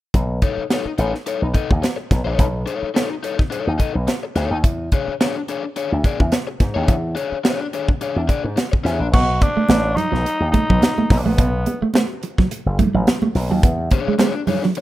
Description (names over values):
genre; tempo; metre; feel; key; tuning
funk; 107 BPM; 4/4; swing 56% on 16ths; B mixolydian; A4 = 440 Hz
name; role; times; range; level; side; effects
slap bass with an envelope filter; bass; 0.1-14.1 s; F#1 to G#2; -21 LUFS; equal; none
crisp fusion drum kit; drums; 0.1-14.8 s; crash cymbal, hi-hat, kick drum, snare drum; -19 LUFS; equal; none
overdriven electric guitar; accompaniment; 0.4-9.1, 13.9-14.8 s; D4 to D#5; -24 LUFS; left 6 dB; none
raspy tenor saxophone; melody; 9.1-11.8 s; B3 to F#4; -21 LUFS; equal; none
electric guitar at the edge of break-up; riff; 9.1-14.8 s; F#3 to B3; -21 LUFS; right 4 dB; none
congas; percussion; 9.4-14.6 s; none; -25 LUFS; right 3 dB; none
room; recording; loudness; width
studio reverb; rough home demo mix; -17 LUFS; side -15 dB against mid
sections
0.1-9.1 A section; 9.1-14.8 B section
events
none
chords
0.1 B9; 4.6 E6; 9.1 B7; 13.6 E13